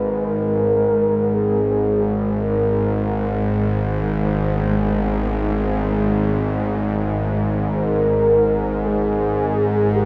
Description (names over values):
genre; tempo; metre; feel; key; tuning
dark ambient drone; free time; none; none; unclear; A4 = 441 Hz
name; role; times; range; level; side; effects
mellow horn-like synth lead; melody; 0.0-10.1 s; G4 to B4; -23 LUFS; equal; lush chorus, diffuse ambient delay
bronze singing bowl; arpeggios; 0.0-4.6 s; G#3; -31 LUFS; equal; diffuse ambient delay
bowed-like drone; drone; 0.0-10.1 s; G#1 to G#2; -22 LUFS; equal; built-in reverb
tam-tam; percussion; 4.6-4.8 s; none; barely audible; none; none
room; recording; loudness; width
wet cathedral reverb, RT60 6.2 s; none; -20 LUFS; mono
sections
0.0-10.1 A section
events
none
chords
0.0 G#sus2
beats
free time